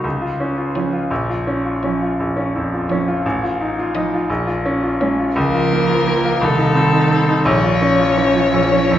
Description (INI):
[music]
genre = classical, slow romantic movement for piano trio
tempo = 56 BPM (dotted quarters)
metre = 6/8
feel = rubato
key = Bb minor from 5.4 s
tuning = A4 = 440 Hz
[part]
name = bright grand piano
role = accompaniment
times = 0.0-9.0 s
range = A1 to F4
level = -17 LUFS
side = equal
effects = none
[part]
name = rich violin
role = melody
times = 0.8-9.0 s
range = Ab4 to Eb5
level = -19 LUFS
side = left 4 dB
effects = none
[part]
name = warm cello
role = second line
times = 0.8-9.0 s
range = Eb3 to Ab3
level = -22 LUFS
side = right 5 dB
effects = none
[sound]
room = wet recital hall reverb, RT60 1.6 s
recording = heard from further back in the room, nothing above 7.7 kHz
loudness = -15 LUFS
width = side -11 dB against mid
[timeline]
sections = 0.0-9.0 A section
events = none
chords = 0.0 Db; 1.1 Bbm; 3.2 F7/A; 4.3 Bbm7; 5.4 Bbm/Db; 6.4 Adim/C; 7.5 Bbm